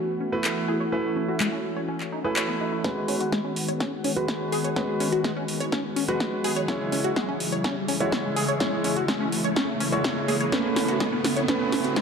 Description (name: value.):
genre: progressive house.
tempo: 125 BPM.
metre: 4/4.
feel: straight.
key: unclear.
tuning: A4 = 444 Hz.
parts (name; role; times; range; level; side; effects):
warm velvety synth lead; melody; 0.0-2.3 s; E4 to F#4; -33 LUFS; right 1 dB; chorus, dub echo.
warm analog pad; sustained chords; 0.0-12.0 s; C#3 to F#4; -31 LUFS; left 2 dB; chorus, sidechain pumping.
tight sequenced synth; arpeggios; 0.0-12.0 s; G#3 to C#5; -29 LUFS; left 1 dB; chorus, phaser, sidechain pumping, dub echo.
warm grand piano; stabs; 0.0-12.0 s; G#3 to C#5; -29 LUFS; right 2 dB; sidechain pumping, low-pass filter, dub echo.
deep house drum kit; drums; 0.4-12.0 s; handclaps, hi-hat, snare drum; -30 LUFS; equal; overdrive.
electronic kick drum; drums; 2.8-12.0 s; none; -33 LUFS; left 1 dB; high-pass filter on kick.
riser; sound effects; 5.3-12.0 s; none; -31 LUFS; right 1 dB; none.
round analog bass; bass; 3.1-11.9 s; none; barely audible; none; none.
room: moderate lush hall reverb, RT60 2.2 s.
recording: dark, warm production.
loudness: -23 LUFS.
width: side -6 dB against mid.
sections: 0.0-2.8 A section; 2.8-12.0 B section.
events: build-up 2.8-12.0; drum fill 2.8-12.0; filter sweep on grand piano 2.8-12.0; riser 5.3-12.0.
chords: 0.0 B7sus4; 2.8 G#m7; 6.7 C#m/G#; 10.5 Aadd9.